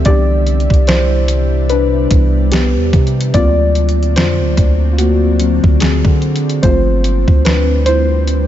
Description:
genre	contemporary R&B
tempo	73 BPM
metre	4/4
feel	swing 58% on 16ths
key	unclear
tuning	A4 = 440 Hz
part	muted felt-like synth keys	accompaniment	0.0-8.5 s	E3 to D5	-16 LUFS	left 2 dB	chorus
part	ethereal airy pad	sustained chords	0.0-8.5 s	C3 to E5	-22 LUFS	equal	ensemble chorus, built-in reverb
part	long sustained 808-style bass	bass	0.0-8.5 s	G1 to D3	-14 LUFS	equal	none
part	detuned 8-bit digital drum machine	drums	0.1-8.5 s	hi-hat, kick drum, snare drum	-14 LUFS	right 1 dB	none
room	little or no reverb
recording	nothing above 7.7 kHz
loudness	-10 LUFS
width	side -12 dB against mid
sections	0.0-8.5 A section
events	synth keys solo 0.0-8.5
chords	0.1 Cmaj9; 3.3 D7alt; 6.6 G7sus4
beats	| 0.06 0.88 1.70 2.52 | 3.34 4.17 4.99 5.81 | 6.63 7.45 8.28

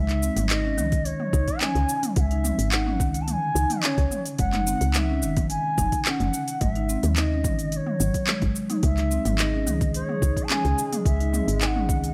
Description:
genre	organic downtempo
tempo	108 BPM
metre	4/4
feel	straight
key	unclear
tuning	A4 = 439 Hz
part	mellow bansuri	melody	0.0-12.1 s	C#5 to A5	-32 LUFS	equal	digital delay
part	marimba with medium mallets	arpeggios	0.0-12.1 s	D#3 to D#4	-31 LUFS	equal	none
part	woody FM bass	bass	0.0-12.1 s	F#1 to D#2	-28 LUFS	equal	none
part	organic electronic drum kit	drums	0.1-12.1 s	cabasa, handclaps, hi-hat, toms	-31 LUFS	equal	overdrive, studio reverb
part	electronic kick drum	drums	0.9-12.0 s	none	-29 LUFS	equal	overdrive, studio reverb
part	warbly tape-like pad	sustained chords	9.3-12.1 s	C#3 to G#4	-38 LUFS	equal	chorus, built-in reverb, sidechain pumping
room	light reverb, digital ambience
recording	none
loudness	-24 LUFS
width	mono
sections	0.0-12.1 A section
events	none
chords	0.0 C#m; 4.4 F#5; 6.6 G#sus4; 8.8 C#m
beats	0.50 1.06 1.61 | 2.17 2.72 3.28 3.83 | 4.39 4.95 5.50 6.06 | 6.61 7.17 7.72 8.28 | 8.83 9.39 9.95 10.50 | 11.06 11.61

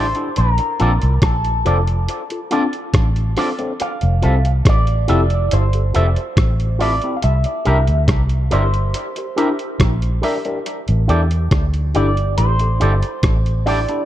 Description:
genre	lovers rock reggae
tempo	70 BPM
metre	4/4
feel	straight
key	F major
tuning	A4 = 438 Hz
part	electric guitar with an envelope filter	melody	0.0-14.1 s	A4 to F5	-24 LUFS	right 1 dB	harmonic tremolo, tape echo
part	overdriven tine electric piano	accompaniment	0.0-14.0 s	C4 to Bb4	-24 LUFS	left 3 dB	phaser, tape echo
part	electric guitar with an envelope filter	stabs	0.0-13.8 s	E4 to E5	-26 LUFS	right 2 dB	spring reverb, tape echo
part	vintage muted fingered electric bass	bass	0.0-13.8 s	F1 to E2	-16 LUFS	equal	none
part	lo-fi sampler-style drum kit	drums	0.1-14.1 s	hi-hat, kick drum, rim click	-19 LUFS	equal	overdrive, tape echo
room	little or no reverb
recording	dark, warm production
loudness	-15 LUFS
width	side -13 dB against mid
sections	0.0-14.1 A section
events	none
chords	0.4 Bbmaj7; 3.8 Fmaj7; 7.2 C7; 10.7 A7sus4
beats	| 0.36 1.22 2.08 2.94 | 3.79 4.65 5.51 6.37 | 7.22 8.08 8.94 9.80 | 10.66 11.52 12.38 13.23

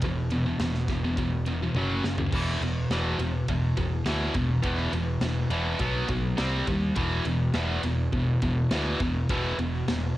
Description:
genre	heavy metal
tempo	103 BPM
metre	4/4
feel	straight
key	unclear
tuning	A4 = 441 Hz
part	high-gain distorted guitar	riff	0.0-10.1 s	E2 to C4	-27 LUFS	equal	distortion, cassette tape
part	picked electric bass	bass	0.0-10.1 s	E1 to D#2	-29 LUFS	equal	none
part	tight metal drum kit	drums	0.0-10.0 s	crash cymbal, kick drum, ride cymbal, snare drum, toms	-33 LUFS	equal	cassette tape
room	little or no reverb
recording	home recording on cassette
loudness	-24 LUFS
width	side -16 dB against mid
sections	0.0-2.3 A section; 2.3-10.2 B section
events	drum fill 1.8-2.3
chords	0.0 E5; 1.8 F#5; 2.3 E5; 5.8 B5; 6.4 C5; 7.0 E5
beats	| 0.02 0.60 1.18 1.75 | 2.33 2.91 3.49 4.07 | 4.64 5.22 5.81 6.39 | 6.97 7.55 8.13 8.71 | 9.30 9.88

